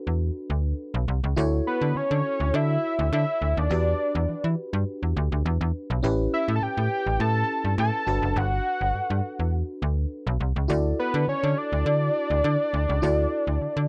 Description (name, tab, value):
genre	early-eighties boogie funk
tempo	103 BPM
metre	4/4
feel	straight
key	unclear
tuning	A4 = 440 Hz
part	FM electric piano	accompaniment	0.0-13.9 s	C#4 to D5	-34 LUFS	equal	chorus
part	slap-like FM bass	bass	0.1-13.9 s	F#1 to E3	-27 LUFS	equal	none
part	fat analog lead	melody	1.7-13.9 s	B4 to A5	-28 LUFS	equal	chorus, slapback echo
room	light reverb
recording	none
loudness	-25 LUFS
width	mono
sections	0.0-13.9 A section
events	none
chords	0.0 Gmaj9 (rootless); 1.4 Dmaj7; 3.7 Em7; 6.0 A9; 8.1 Gmaj9; 10.7 D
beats	0.21 0.79 | 1.37 1.96 2.54 3.12 | 3.70 4.29 4.87 5.45 | 6.03 6.62 7.20 7.78 | 8.36 8.95 9.53 10.11 | 10.69 11.28 11.86 12.44 | 13.02 13.61